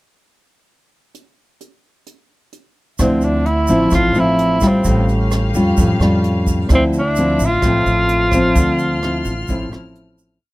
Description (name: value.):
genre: bossa nova.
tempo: 130 BPM.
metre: 4/4.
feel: straight.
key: D minor.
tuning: A4 = 439 Hz.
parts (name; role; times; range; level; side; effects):
jazz brush drum kit; drums; 1.1-10.3 s; hi-hat, kick drum, rim click; -22 LUFS; equal; none.
breathy tenor saxophone; melody; 3.0-10.0 s; C4 to F4; -18 LUFS; equal; none.
nylon-string guitar; accompaniment; 3.0-10.4 s; A2 to F4; -17 LUFS; left 1 dB; none.
warm studio string section; sustained chords; 3.0-10.4 s; C4 to F6; -30 LUFS; left 3 dB; none.
upright bass; bass; 3.0-10.4 s; A1 to E#2; -19 LUFS; equal; none.
tube shaker; percussion; 3.0-10.4 s; none; -33 LUFS; right 5 dB; none.
room: light reverb.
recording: close, detailed microphones.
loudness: -13 LUFS.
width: side -19 dB against mid.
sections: 1.1-3.0 pickup bar; 3.0-10.4 A section.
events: fade-out 8.6-10.4.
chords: 1.1 N.C.; 3.0 Dm9; 4.9 Aaug7; 6.7 Dm9.